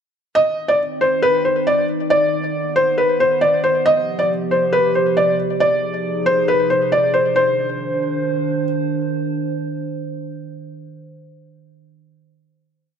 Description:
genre	hip hop, trap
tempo	137 BPM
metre	4/4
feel	half-time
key	C harmonic minor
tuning	A4 = 439 Hz
part	felt-muted upright piano	melody	0.4-8.6 s	B4 to Eb5	-16 LUFS	equal	ping-pong delay
part	warbly tape-like pad	sustained chords	0.8-11.6 s	C3 to C5	-23 LUFS	right 1 dB	chorus, built-in reverb
room	moderate lush hall reverb, RT60 2.6 s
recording	none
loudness	-16 LUFS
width	side -7 dB against mid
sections	0.4-7.4 breakdown; 7.4-10.9 final chord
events	none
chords	0.4 Cmadd9; 3.9 G7/C; 5.6 Fm7/C; 7.4 Cmadd9

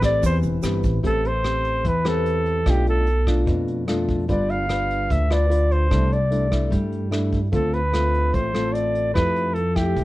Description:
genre	bossa nova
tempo	148 BPM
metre	4/4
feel	straight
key	A minor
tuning	A4 = 440 Hz
part	warm flugelhorn	melody	0.0-10.0 s	G4 to F5	-23 LUFS	right 1 dB	none
part	nylon-string guitar	accompaniment	0.0-10.0 s	A2 to B4	-24 LUFS	left 2 dB	none
part	upright bass	bass	0.0-10.0 s	E1 to G2	-23 LUFS	equal	none
part	vintage brush drum kit	drums	0.0-10.0 s	hi-hat, kick drum, rim click	-27 LUFS	equal	none
part	egg shaker	percussion	0.0-1.0 s	none	-43 LUFS	right 9 dB	none
room	light reverb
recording	dark, warm production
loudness	-19 LUFS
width	side -17 dB against mid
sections	0.0-1.0 A section; 1.0-10.0 B section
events	flugelhorn solo 0.0-1.0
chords	0.0 Am9; 2.7 Bm7b5; 4.3 G7; 5.9 C69; 7.5 Dm7; 9.1 Fmaj9

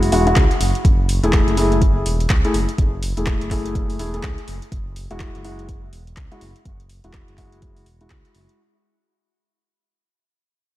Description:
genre	deep house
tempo	124 BPM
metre	4/4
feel	swing 60% on 16ths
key	unclear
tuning	A4 = 437 Hz
part	felt-muted upright piano	stabs	0.0-8.6 s	G#3 to G#4	-22 LUFS	left 2 dB	vintage 12-bit sampler grit, sidechain pumping, diffuse ambient delay
part	smooth synth bass	bass	0.0-8.5 s	E1 to C#2	-23 LUFS	equal	sidechain pumping
part	deep house drum kit	drums	0.0-8.6 s	handclaps, hi-hat	-28 LUFS	equal	none
part	electronic kick drum	drums	0.4-8.2 s	none	-18 LUFS	equal	none
room	light reverb, digital ambience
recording	none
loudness	-16 LUFS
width	side -15 dB against mid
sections	0.0-8.6 A section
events	fade-out 0.0-8.6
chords	0.0 Eadd9; 0.8 F#m9; 4.7 Eadd9

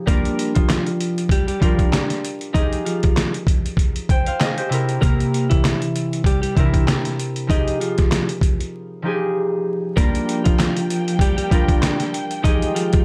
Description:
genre	hip hop, boom-bap hip-hop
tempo	97 BPM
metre	4/4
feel	swing 55% on 16ths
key	F dorian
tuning	A4 = 440 Hz
part	concert harp	accompaniment	0.0-13.0 s	C3 to G5	-26 LUFS	equal	cassette tape, high-pass filter, low-pass filter
part	clean electric guitar	melody	0.1-13.0 s	E3 to Eb5	-26 LUFS	equal	spring reverb, high-pass filter, low-pass filter
part	trip hop sampler-style drum kit	drums	0.1-13.0 s	handclaps, hi-hat, kick drum, snare drum	-21 LUFS	equal	none
part	warm studio string section	sustained chords	10.0-13.0 s	Eb3 to G5	-31 LUFS	equal	high-pass filter, low-pass filter
room	light reverb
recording	vinyl crackle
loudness	-20 LUFS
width	mono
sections	0.0-10.0 A section; 10.0-13.0 B section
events	break 8.7-10.0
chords	0.1 Gm7; 2.5 Fm9; 4.7 C7; 7.5 Fm9; 10.0 Gm7; 12.4 Fm9

